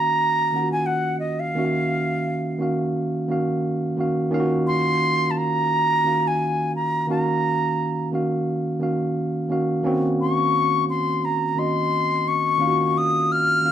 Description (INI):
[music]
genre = R&B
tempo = 87 BPM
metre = 4/4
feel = swing 58% on 16ths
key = Eb dorian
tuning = A4 = 440 Hz
[part]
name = reedy concert flute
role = melody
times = 0.0-13.7 s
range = Eb5 to F6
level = -21 LUFS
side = left 1 dB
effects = none
[part]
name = tine electric piano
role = accompaniment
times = 0.0-13.7 s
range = Eb3 to Gb5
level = -22 LUFS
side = right 1 dB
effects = none
[sound]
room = moderate studio reverb, RT60 0.7 s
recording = band playing live in one room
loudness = -20 LUFS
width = side -10 dB against mid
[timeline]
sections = 0.0-13.7 A section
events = none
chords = 0.0 Ebm9